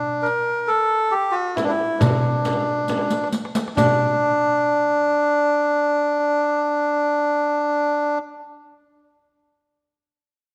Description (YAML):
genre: Arabic maqam ensemble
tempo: 136 BPM (eighths)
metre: 10/8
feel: straight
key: D maqam suznak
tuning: A4 = 440 Hz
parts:
  - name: melodica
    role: melody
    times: 0.0-8.2 s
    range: D4 to Bb4+20c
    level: -21 LUFS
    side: equal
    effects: none
  - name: darbuka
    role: percussion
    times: 0.3-4.2 s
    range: none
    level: -28 LUFS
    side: equal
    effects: none
  - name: riq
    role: percussion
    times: 0.3-4.2 s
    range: none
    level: -30 LUFS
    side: equal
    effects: none
  - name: frame drum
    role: percussion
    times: 1.6-4.2 s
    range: none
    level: -29 LUFS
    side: equal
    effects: none
room: moderate recital hall reverb, RT60 1.8 s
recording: dark, warm production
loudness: -20 LUFS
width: mono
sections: 0.0-3.8 A section; 3.8-8.2 B section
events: drum fill 2.9-3.8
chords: none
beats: 0.26 0.70 1.14 1.58 2.02 2.46 2.90 3.34 | 3.78 4.21 4.66 5.09 5.54 5.97 6.41 6.85 7.29 7.73